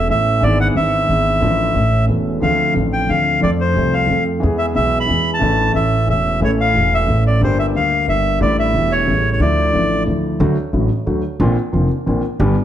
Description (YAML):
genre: tango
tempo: 180 BPM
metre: 3/4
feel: rubato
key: D minor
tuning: A4 = 441 Hz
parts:
  - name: bandoneon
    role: melody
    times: 0.0-10.0 s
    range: C5 to B5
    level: -18 LUFS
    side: equal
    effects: none
  - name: warm concert grand piano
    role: accompaniment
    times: 0.0-12.5 s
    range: E1 to A4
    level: -18 LUFS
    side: equal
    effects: none
  - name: upright bass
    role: bass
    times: 0.0-12.5 s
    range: E1 to F2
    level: -20 LUFS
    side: right 1 dB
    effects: none
room: moderate large studio reverb, RT60 1.2 s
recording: dark, warm production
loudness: -14 LUFS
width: side -11 dB against mid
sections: 0.0-10.4 A section; 10.4-12.6 B section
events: none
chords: 0.4 E7/G#; 1.4 Dm/A; 1.8 A; 2.4 Dm7; 3.4 F; 4.4 E; 5.4 Asus4; 5.7 A; 7.4 Gm; 8.4 A7sus4; 9.1 A7; 9.4 Dmadd9; 10.4 D; 11.4 Bbadd9